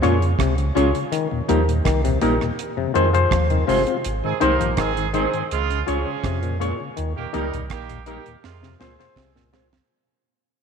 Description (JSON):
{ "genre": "roots reggae", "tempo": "82 BPM", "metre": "4/4", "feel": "straight", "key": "Ab major", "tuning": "A4 = 445 Hz", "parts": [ { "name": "mellow electric guitar", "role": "accompaniment", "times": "0.0-9.7 s", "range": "Bb3 to Db5", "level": "-27 LUFS", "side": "right 9 dB", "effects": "tape echo" }, { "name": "mellow tonewheel organ", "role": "accompaniment", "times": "0.0-9.8 s", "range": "Eb2 to F4", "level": "-29 LUFS", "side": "left 7 dB", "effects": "slow rotary speaker" }, { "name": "mellow clav", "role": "arpeggios", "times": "0.0-9.7 s", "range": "Bb2 to F3", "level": "-26 LUFS", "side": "left 8 dB", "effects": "none" }, { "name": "barky reed electric piano", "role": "stabs", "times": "0.0-9.8 s", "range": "Eb4 to Db5", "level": "-26 LUFS", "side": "left 7 dB", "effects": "overdrive" }, { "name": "warm sub bass", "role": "bass", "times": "0.0-9.8 s", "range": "G1 to F2", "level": "-23 LUFS", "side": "right 1 dB", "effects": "none" }, { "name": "deep reggae drum kit", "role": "drums", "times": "0.0-9.9 s", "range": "hi-hat, kick drum, rim click, snare drum", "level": "-29 LUFS", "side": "right 5 dB", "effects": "none" }, { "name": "warm horn section", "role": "second line", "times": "4.2-9.5 s", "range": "C3 to Bb4", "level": "-28 LUFS", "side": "right 12 dB", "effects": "tape echo" } ], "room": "moderate echo chamber reverb, RT60 2.6 s", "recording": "1960s-style stereo with parts hard left and right", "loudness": "-19 LUFS", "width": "side -6 dB against mid", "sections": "0.0-4.0 A section; 4.0-9.9 B section", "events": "fade-out 4.0-9.9; drum fill 8.4-9.9", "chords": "0.0 Db; 1.1 Eb; 2.6 Fm; 4.0 Ab; 5.5 Db; 7.0 Eb; 8.4 Fm", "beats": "0.39 | 1.12 1.85 2.58 3.31 | 4.05 4.78 5.51 6.24 | 6.97 7.70 8.43 9.16" }